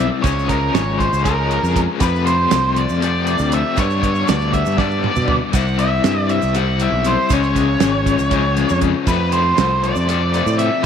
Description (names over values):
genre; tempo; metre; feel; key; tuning
psychedelic rock; 238 BPM (eighths); 7/8; straight; unclear; A4 = 440 Hz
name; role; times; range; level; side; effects
octave-fuzz lead guitar; melody; 0.0-10.9 s; A#4 to F#5; -20 LUFS; right 2 dB; distortion, tape echo
biting overdriven guitar; riff; 0.0-10.9 s; F2 to E4; -20 LUFS; left 10 dB; tremolo
growling fingered electric bass; bass; 0.0-10.7 s; G#1 to B2; -20 LUFS; right 1 dB; overdrive
cloth-damped thuddy drum kit; drums; 0.2-10.9 s; hi-hat, kick drum, snare drum, toms; -21 LUFS; right 4 dB; none
tube shaker; percussion; 0.3-10.6 s; none; -38 LUFS; right 18 dB; none
room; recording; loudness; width
moderate echo chamber reverb, RT60 2.2 s; 1960s-style stereo with parts hard left and right; -15 LUFS; side -8 dB against mid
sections
0.0-10.9 A section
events
drum fill 4.8-5.5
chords
0.3 C#6; 2.0 F; 3.8 G; 5.5 Cmaj7; 7.3 C#; 9.1 F